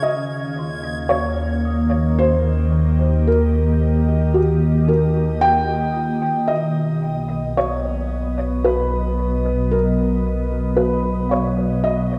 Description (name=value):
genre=ambient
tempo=56 BPM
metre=3/4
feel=straight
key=Eb mixolydian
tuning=A4 = 441 Hz
part: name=felt-muted upright piano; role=melody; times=0.0-12.2 s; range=G4 to G5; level=-24 LUFS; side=equal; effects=analog delay
part: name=glassy FM pad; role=sustained chords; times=0.0-12.2 s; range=B2 to F5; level=-23 LUFS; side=equal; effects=ensemble chorus, built-in reverb
part: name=celesta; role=arpeggios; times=0.0-12.2 s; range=Eb4 to Eb6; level=-40 LUFS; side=equal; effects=analog delay
part: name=round analog bass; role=bass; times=0.0-12.2 s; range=B1 to Eb2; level=-24 LUFS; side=equal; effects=none
room=wet spring reverb, RT60 2.9 s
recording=echo-heavy mix, cassette tape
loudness=-19 LUFS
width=mono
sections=0.0-12.2 A section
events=fade-in on celesta 0.0-12.2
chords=0.0 Eb; 6.5 B